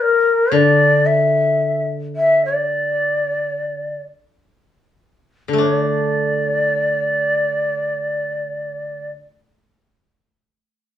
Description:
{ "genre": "japanese traditional", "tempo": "36-57 BPM", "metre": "2/4", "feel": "rubato", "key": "unclear", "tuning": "A4 = 439 Hz", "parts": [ { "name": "breathy shakuhachi", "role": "melody", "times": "0.0-9.1 s", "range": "Bb4 to E5", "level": "-17 LUFS", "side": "left 1 dB", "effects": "none" }, { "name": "koto", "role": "accompaniment", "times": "0.5-9.1 s", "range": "D3 to D4", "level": "-21 LUFS", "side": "left 1 dB", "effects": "none" } ], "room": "light reverb", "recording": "studio reverb", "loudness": "-16 LUFS", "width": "side -11 dB against mid", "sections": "0.0-5.6 A section; 5.6-11.0 B section", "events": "slowing down 0.5-5.6", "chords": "none" }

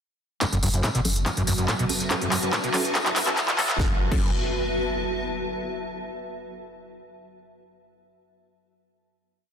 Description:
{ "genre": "driving peak-time techno", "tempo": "142 BPM", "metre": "4/4", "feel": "straight", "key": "F# minor", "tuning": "A4 = 440 Hz", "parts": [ { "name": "overdriven acid bass", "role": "riff", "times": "0.4-4.3 s", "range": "F#2 to B2", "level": "-28 LUFS", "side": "equal", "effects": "distortion, analog chorus, sidechain pumping, digital delay" }, { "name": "filtered dub chord stab", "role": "stabs", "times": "0.4-4.3 s", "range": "F#3 to A4", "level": "-33 LUFS", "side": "right 1 dB", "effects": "phaser, sidechain pumping, digital delay" }, { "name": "deep dark ambient pad", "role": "drone", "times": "1.2-3.8 s", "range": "F#3", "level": "-37 LUFS", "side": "right 3 dB", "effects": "chorus, built-in reverb, sidechain pumping" }, { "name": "cloth-damped thuddy drum kit", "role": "drums", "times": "0.4-3.8 s", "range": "hi-hat, snare drum, tambourine", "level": "-34 LUFS", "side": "equal", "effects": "sidechain pumping on hats, high-pass filter on hats, studio reverb, high-pass filter on snare, sidechain pumping on perc, high-pass filter on perc, high-pass filter on room" }, { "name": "electronic kick drum", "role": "drums", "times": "0.4-4.2 s", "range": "none", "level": "-27 LUFS", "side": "equal", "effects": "overdrive, high-pass filter on kick, studio reverb" }, { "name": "techno drum kit", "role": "drums", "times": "0.4-4.2 s", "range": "crash cymbal, handclaps, hi-hat, snare drum", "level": "-26 LUFS", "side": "equal", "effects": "overdrive, high-pass filter on snare, studio reverb, sidechain pumping on hats, high-pass filter on hats, sidechain pumping on cymbals, high-pass filter on cymbals" }, { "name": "riser and impact", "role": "sound effects", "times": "1.2-5.5 s", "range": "none", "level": "-35 LUFS", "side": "equal", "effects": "none" }, { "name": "granular cloud pad", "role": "texture", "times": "1.6-5.4 s", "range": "F#4 to A5", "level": "-30 LUFS", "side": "left 1 dB", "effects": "built-in reverb, sidechain pumping" }, { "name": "warm sub bass", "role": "bass", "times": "0.5-4.3 s", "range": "F#1", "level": "-30 LUFS", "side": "equal", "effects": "overdrive, sidechain pumping, low-pass filter" } ], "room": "moderate lush hall reverb, RT60 1.6 s, digital ambience", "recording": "dense, heavily limited modern master, high-pass filter", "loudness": "-22 LUFS", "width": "side -7 dB against mid", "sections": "0.4-3.8 build; 3.8-5.5 final chord", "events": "build-up 0.4-3.8; drum fill 0.4-3.8; filter sweep on acid bass 0.4-3.8; filter sweep on synth stab 0.4-3.8; filter sweep 0.4-3.8; riser 1.2-3.8", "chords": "0.4 F#m" }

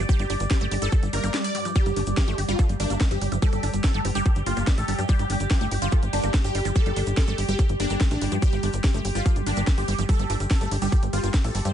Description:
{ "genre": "psychedelic trance", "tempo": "144 BPM", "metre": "4/4", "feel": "straight", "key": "unclear", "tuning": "A4 = 440 Hz", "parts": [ { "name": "overtone-sweeping drone", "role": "sustained chords", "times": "0.0-11.7 s", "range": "G4 to D5", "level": "-34 LUFS", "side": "right 1 dB", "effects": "chorus, built-in reverb, phaser, vintage 12-bit sampler grit, sidechain pumping" }, { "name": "wide unison pluck", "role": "riff", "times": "0.0-11.7 s", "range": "F3 to A4", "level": "-33 LUFS", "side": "moving between left 7 dB and right 9 dB", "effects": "auto-pan, sidechain pumping, dub echo" }, { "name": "tight sequencer bass", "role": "bass", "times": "0.0-11.7 s", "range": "G1 to G2", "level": "-26 LUFS", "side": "equal", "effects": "tube saturation" }, { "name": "granular cloud pad", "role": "texture", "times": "0.0-11.7 s", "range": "G3 to G6", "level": "-33 LUFS", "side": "equal", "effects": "built-in reverb, sidechain pumping" }, { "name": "supersaw stab", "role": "melody", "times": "0.1-11.7 s", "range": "D4 to D5", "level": "-31 LUFS", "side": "equal", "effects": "phaser, sidechain pumping, dub echo" }, { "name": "electronic kick drum", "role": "drums", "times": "0.1-11.4 s", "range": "none", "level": "-20 LUFS", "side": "equal", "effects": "overdrive" }, { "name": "garage drum kit", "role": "drums", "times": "0.1-11.7 s", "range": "hi-hat, snare drum", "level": "-32 LUFS", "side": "equal", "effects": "overdrive" }, { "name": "tube shaker", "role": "percussion", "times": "0.1-11.7 s", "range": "none", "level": "-42 LUFS", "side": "right 5 dB", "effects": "none" }, { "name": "resonant blip pluck", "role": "second line", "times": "3.1-5.1, 9.8-11.7 s", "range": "F3 to D4", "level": "-44 LUFS", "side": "right 1 dB", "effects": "none" } ], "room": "little or no reverb", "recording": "nothing above 10.5 kHz", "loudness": "-21 LUFS", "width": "side -10 dB against mid", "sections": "0.0-11.7 A section", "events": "break 1.3-1.8", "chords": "0.0 G5" }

